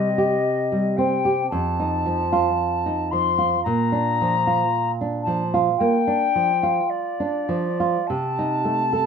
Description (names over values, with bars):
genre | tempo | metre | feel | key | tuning
romantic duo for flute and classical guitar | 49-57 BPM | 4/4 | rubato | unclear | A4 = 440 Hz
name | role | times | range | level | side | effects
silver concert flute | melody | 0.0-9.1 s | D5 to C6 | -23 LUFS | left 6 dB | none
nylon-string guitar | accompaniment | 0.0-9.1 s | F2 to A4 | -22 LUFS | right 3 dB | none
room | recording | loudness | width
moderate studio reverb, RT60 0.8 s | minimal, uncompressed stereo recording | -19 LUFS | side -6 dB against mid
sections
0.0-9.1 A section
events
none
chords
0.0 Cm; 1.5 F7; 3.7 Bb; 8.1 Adim/C